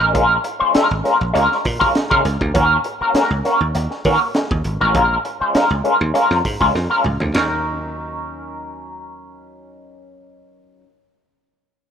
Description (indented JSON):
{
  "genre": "funk",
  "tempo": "100 BPM",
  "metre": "4/4",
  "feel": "straight",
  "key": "Eb minor",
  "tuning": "A4 = 440 Hz",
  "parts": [
    { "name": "electric guitar with an envelope filter", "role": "accompaniment", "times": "0.0-10.9 s", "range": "Gb3 to C5", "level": "-17 LUFS", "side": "equal", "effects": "wah, analog chorus" },
    { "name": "dry thumbed slap bass", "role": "bass", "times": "0.0-10.8 s", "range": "Ab1 to Eb3", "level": "-22 LUFS", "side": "right 1 dB", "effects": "none" },
    { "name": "crunchy breakbeat drum kit", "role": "drums", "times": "0.1-7.5 s", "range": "hi-hat, kick drum, ride cymbal, snare drum, toms", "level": "-23 LUFS", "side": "right 1 dB", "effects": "none" }
  ],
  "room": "light reverb, studio ambience",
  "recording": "rough home demo mix",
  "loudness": "-15 LUFS",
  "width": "side -8 dB against mid",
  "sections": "0.0-7.3 A section; 7.3-9.7 B section",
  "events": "drum fill 6.7-7.3",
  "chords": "0.1 Bbm7; 2.5 Ebm7; 4.9 Bbm7; 7.3 Ebm7"
}